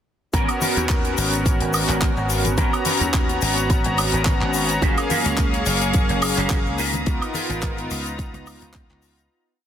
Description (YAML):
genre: nu-disco, nu disco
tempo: 107 BPM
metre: 4/4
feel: swing 54% on 16ths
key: G# dorian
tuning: A4 = 445 Hz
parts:
  - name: warm analog pad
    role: accompaniment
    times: 0.3-9.3 s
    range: A#3 to A#5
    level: -24 LUFS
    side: equal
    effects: chorus, tremolo, cassette tape, sidechain pumping, analog delay
  - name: electric guitar with an envelope filter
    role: riff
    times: 0.3-9.1 s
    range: B3 to A#4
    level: -29 LUFS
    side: right 2 dB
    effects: analog chorus, analog delay
  - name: dry thumbed slap bass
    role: bass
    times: 0.3-9.3 s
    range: F#1 to D#2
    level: -26 LUFS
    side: equal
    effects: none
  - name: electronic kick drum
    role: drums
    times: 0.3-8.9 s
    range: none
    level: -22 LUFS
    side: equal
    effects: none
  - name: tight funk drum kit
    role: drums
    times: 0.3-9.3 s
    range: handclaps, hi-hat, shaker, woodblock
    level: -25 LUFS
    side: left 2 dB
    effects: none
  - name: tube shaker and congas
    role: percussion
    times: 0.3-9.3 s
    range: none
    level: -34 LUFS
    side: left 3 dB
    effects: none
  - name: warm studio string section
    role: sustained chords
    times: 4.8-9.3 s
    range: F#3 to D#6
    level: -30 LUFS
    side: left 2 dB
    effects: sidechain pumping
room: light reverb, studio reverb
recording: dense, heavily limited modern master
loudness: -18 LUFS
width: side -9 dB against mid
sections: 0.3-9.3 drop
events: drop 0.3-9.3; fade-out 6.3-9.3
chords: 0.3 G#m11; 4.8 F#maj7; 6.8 C#13